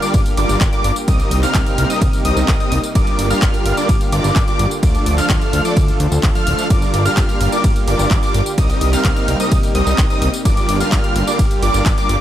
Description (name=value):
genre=EDM, festival progressive house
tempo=128 BPM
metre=4/4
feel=straight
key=G minor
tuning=A4 = 440 Hz
part: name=lush unison pad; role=sustained chords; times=0.0-12.2 s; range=C3 to A4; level=-24 LUFS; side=equal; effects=chorus, sidechain pumping
part: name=wide unison lead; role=arpeggios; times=0.0-12.2 s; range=D6 to F6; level=-22 LUFS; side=left 1 dB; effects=wide subtle chorus, sidechain pumping, tape echo
part: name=supersaw chords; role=riff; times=0.0-12.2 s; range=F3 to F5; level=-22 LUFS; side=right 1 dB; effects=sidechain pumping, tape echo
part: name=big-room dance drum kit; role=drums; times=0.0-12.2 s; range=handclaps, hi-hat, ride cymbal, tambourine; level=-25 LUFS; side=equal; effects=overdrive
part: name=fat analog bass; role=bass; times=0.1-12.2 s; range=D1 to D2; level=-19 LUFS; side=equal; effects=tube saturation, sidechain pumping
part: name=electronic kick drum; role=drums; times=0.1-12.0 s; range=none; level=-17 LUFS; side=equal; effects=none
room=little or no reverb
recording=none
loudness=-13 LUFS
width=side -12 dB against mid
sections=0.0-12.2 A section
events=none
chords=0.0 Gm7; 1.1 Cm7; 3.0 Gm7; 4.8 Dm; 6.7 Gm7; 8.6 Cm7; 10.5 Gm7